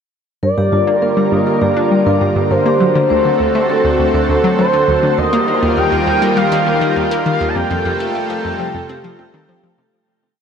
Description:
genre	ambient, sequencer-driven space music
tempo	101 BPM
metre	4/4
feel	straight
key	G minor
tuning	A4 = 440 Hz
part	expressive portamento lead	melody	0.4-9.3 s	C5 to A5	-17 LUFS	equal	wide subtle chorus, tape echo
part	lush unison pad	sustained chords	0.4-9.9 s	C3 to Bb4	-18 LUFS	equal	chorus
part	vibraphone with medium hard mallets	arpeggios	0.4-9.9 s	F4 to C5	-21 LUFS	left 1 dB	auto-pan, tape echo
part	analog pluck	riff	0.4-9.9 s	D2 to D4	-18 LUFS	equal	chorus, tape echo
room	wet shimmer reverb, RT60 7.8 s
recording	none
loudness	-12 LUFS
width	side -7 dB against mid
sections	0.4-9.9 A section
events	fade-out 6.8-9.9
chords	0.4 Gm7; 2.8 D7; 5.2 Ebadd9; 7.6 Fadd9

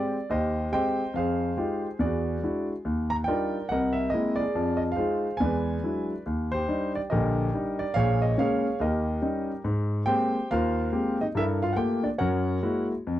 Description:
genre	solo jazz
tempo	141 BPM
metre	4/4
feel	swing 65% on 8ths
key	Eb major, Ab major from 9.6 s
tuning	A4 = 440 Hz
part	warm concert grand piano	solo	0.0-13.2 s	Bb1 to Bb5	-24 LUFS	equal	none
room	little or no reverb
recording	dry, close 1970s-style studio recording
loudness	-24 LUFS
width	side -13 dB against mid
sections	0.0-9.6 A section; 9.6-13.2 B section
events	none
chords	0.0 Abmaj7; 1.1 Fm9; 2.0 E9; 2.8 Ebmaj9; 3.7 C7alt; 4.5 Fm7; 5.4 E9; 6.2 Ebmaj7; 7.9 Bbm7; 8.8 Eb7; 9.6 Abmaj9; 11.3 Gm9; 12.2 Gb9

